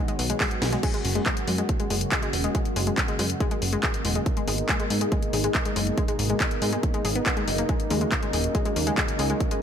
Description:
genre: uplifting trance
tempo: 140 BPM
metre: 4/4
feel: straight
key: G# minor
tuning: A4 = 440 Hz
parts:
  - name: lush unison pad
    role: sustained chords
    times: 0.0-9.6 s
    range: B2 to F#4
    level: -30 LUFS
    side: right 1 dB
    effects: chorus, sidechain pumping
  - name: analog pluck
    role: arpeggios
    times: 0.0-9.6 s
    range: G#3 to G#4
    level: -30 LUFS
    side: left 3 dB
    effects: chorus, sidechain pumping, dub echo
  - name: house drum kit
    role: drums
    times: 0.1-9.6 s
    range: congas, crash cymbal, handclaps, hi-hat, snare drum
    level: -28 LUFS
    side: left 1 dB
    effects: sidechain pumping on hats, sidechain pumping on cymbals, sidechain pumping on perc
  - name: plucky analog bass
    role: bass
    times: 0.2-9.3 s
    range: D#1 to G#2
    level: -27 LUFS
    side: right 1 dB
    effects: tube saturation, sidechain pumping
  - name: electronic kick drum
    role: drums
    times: 0.4-9.5 s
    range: none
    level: -27 LUFS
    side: right 1 dB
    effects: none
room: light reverb, digital ambience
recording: none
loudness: -22 LUFS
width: side -8 dB against mid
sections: 0.0-9.6 A section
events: filter sweep on analog synth pad 0.0-9.6; drum fill 0.6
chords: 0.0 B; 0.8 F#; 4.3 G#madd9; 7.7 D#m7

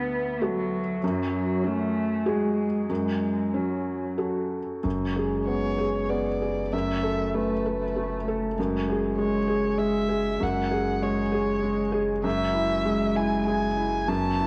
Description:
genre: neoclassical piano and strings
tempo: 98 BPM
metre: 3/4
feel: rubato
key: F# minor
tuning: A4 = 440 Hz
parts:
  - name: muted cello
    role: second line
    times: 0.0-14.5 s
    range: F#3 to B3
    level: -32 LUFS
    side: equal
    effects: cassette tape
  - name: felt-muted upright piano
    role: accompaniment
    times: 0.0-14.5 s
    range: D2 to A4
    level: -28 LUFS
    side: equal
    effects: cassette tape
  - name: punchy sub bass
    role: bass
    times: 4.8-14.5 s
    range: F#1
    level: -38 LUFS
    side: equal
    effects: none
  - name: muted violin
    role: melody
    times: 5.5-14.5 s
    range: B4 to A5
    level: -32 LUFS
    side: equal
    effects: cassette tape
room: moderate lush hall reverb, RT60 2.4 s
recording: home recording on cassette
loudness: -26 LUFS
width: mono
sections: 0.0-4.8 A section; 4.8-14.5 B section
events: none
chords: 0.0 Bm7/D; 1.0 F#madd9; 2.9 F#m; 4.8 Bm69/F#; 6.7 Asus2/F#; 8.6 F#sus2; 12.2 Eadd9/F#

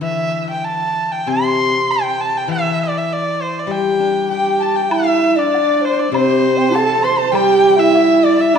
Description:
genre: chinese traditional, Chinese chamber ensemble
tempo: 99 BPM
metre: 2/4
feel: rubato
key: G zhi mode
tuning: A4 = 441 Hz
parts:
  - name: rich erhu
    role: melody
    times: 0.0-8.6 s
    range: C5 to C6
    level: -18 LUFS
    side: right 1 dB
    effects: none
  - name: steel-string zither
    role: accompaniment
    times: 0.0-8.6 s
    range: C3 to G4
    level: -19 LUFS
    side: left 3 dB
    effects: none
  - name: breathy mellow large dizi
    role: second line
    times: 4.3-8.6 s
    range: C5 to C6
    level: -18 LUFS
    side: left 5 dB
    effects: none
  - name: warm horsehead fiddle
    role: second line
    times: 4.3-8.6 s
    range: C4 to C5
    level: -16 LUFS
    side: right 5 dB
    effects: none
  - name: woodblock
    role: percussion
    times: 4.9-8.6 s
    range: none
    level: -28 LUFS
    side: left 1 dB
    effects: none
room: wet recital hall reverb, RT60 1.6 s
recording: dark, warm production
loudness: -13 LUFS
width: side -7 dB against mid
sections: 0.0-4.9 A section; 4.9-8.6 B section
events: none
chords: none

